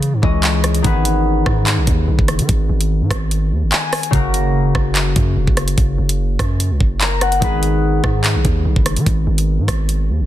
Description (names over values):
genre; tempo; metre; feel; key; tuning
hip hop, drill; 146 BPM; 4/4; half-time; G# minor; A4 = 440 Hz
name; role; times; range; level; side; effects
concert harp; accompaniment; 0.0-10.3 s; C#3 to G#5; -20 LUFS; left 3 dB; none
long sustained 808-style bass; bass; 0.0-10.3 s; E1 to D#3; -18 LUFS; right 1 dB; none
drill drum kit; drums; 0.0-10.0 s; handclaps, hi-hat, kick drum, rim click; -18 LUFS; right 1 dB; none
room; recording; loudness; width
little or no reverb; dense, heavily limited modern master; -14 LUFS; side -13 dB against mid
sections
0.8-10.3 A section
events
none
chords
0.0 C#m; 0.8 G#m; 4.1 F#; 7.4 G#m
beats
0.02 0.43 | 0.85 1.26 1.67 2.08 | 2.49 2.90 3.31 3.72 | 4.13 4.54 4.96 5.37 | 5.78 6.19 6.60 7.01 | 7.42 7.83 8.24 8.65 | 9.06 9.48 9.89